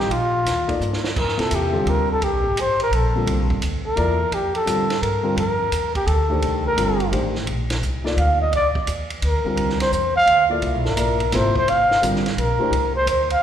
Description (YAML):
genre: modal jazz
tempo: 171 BPM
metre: 3/4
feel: swing 65% on 8ths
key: unclear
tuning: A4 = 442 Hz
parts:
  - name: breathy trumpet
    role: melody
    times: 0.0-13.4 s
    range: F4 to F5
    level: -20 LUFS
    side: equal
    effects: none
  - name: dark upright piano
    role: accompaniment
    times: 0.0-12.7 s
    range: C3 to D5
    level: -26 LUFS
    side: left 1 dB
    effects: none
  - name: upright bass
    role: bass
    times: 0.0-13.4 s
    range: G1 to A2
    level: -24 LUFS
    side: equal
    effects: none
  - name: compact cocktail drum kit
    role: drums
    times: 0.0-13.4 s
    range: crash cymbal, hi-hat, kick drum, ride cymbal, snare drum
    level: -29 LUFS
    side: right 2 dB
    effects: none
room: wet recital hall reverb, RT60 1.6 s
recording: recorded in a church or concert hall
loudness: -18 LUFS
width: side -9 dB against mid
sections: 0.0-1.2 A section; 1.2-13.4 B section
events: drum fill 0.8-1.2; trumpet solo 1.2-13.4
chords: 0.0 F9sus4; 1.2 C9sus4; 5.4 F9sus4; 9.6 C9sus4